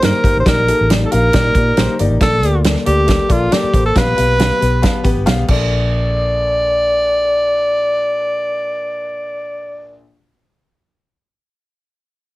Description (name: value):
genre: uptempo 1960s-style soul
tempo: 137 BPM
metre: 4/4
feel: straight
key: Bb major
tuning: A4 = 440 Hz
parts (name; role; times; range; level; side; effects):
- breathy tenor saxophone; melody; 0.0-10.0 s; F4 to D5; -16 LUFS; equal; none
- warm upright piano; accompaniment; 0.0-10.0 s; Bb1 to B5; -22 LUFS; left 3 dB; none
- vintage muted fingered electric bass; bass; 0.0-10.0 s; G1 to Bb2; -18 LUFS; equal; none
- natural country drum kit; drums; 0.0-5.6 s; crash cymbal, hi-hat, kick drum, snare drum; -16 LUFS; right 1 dB; none
room: light reverb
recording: heavily compressed radio sound, multiband compression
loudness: -12 LUFS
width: side -18 dB against mid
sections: 0.0-2.2 A section; 2.2-5.7 B section; 5.7-9.2 C section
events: upright piano fill 1.6-2.2, 4.4-5.7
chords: 0.5 Ebmaj7; 2.2 Bbmaj7; 4.0 G7/Bb; 5.5 Bbmaj7